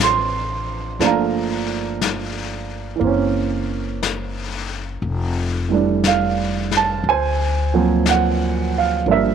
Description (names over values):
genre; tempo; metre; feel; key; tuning
jazz ballad; 60 BPM; 4/4; swing 68% on 8ths; unclear; A4 = 440 Hz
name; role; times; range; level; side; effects
warm baby grand piano; accompaniment; 0.0-9.3 s; Fb3 to D6; -19 LUFS; right 7 dB; none
upright bass; bass; 0.0-9.3 s; F1 to D2; -24 LUFS; left 3 dB; none
vintage brush drum kit; drums; 0.0-9.3 s; brushed snare drum, hi-hat, snare drum; -26 LUFS; left 9 dB; none
room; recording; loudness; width
moderate spring reverb, RT60 2.3 s; 1960s-style stereo with parts hard left and right; -18 LUFS; side -7 dB against mid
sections
0.0-9.3 A section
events
none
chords
0.0 Dm7; 1.0 Gm9; 3.0 Gb7#11; 5.0 Fmaj13; 7.0 D7alt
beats
| 1.00 2.01 3.02 4.02 | 5.03 6.04 7.05 8.06 | 9.07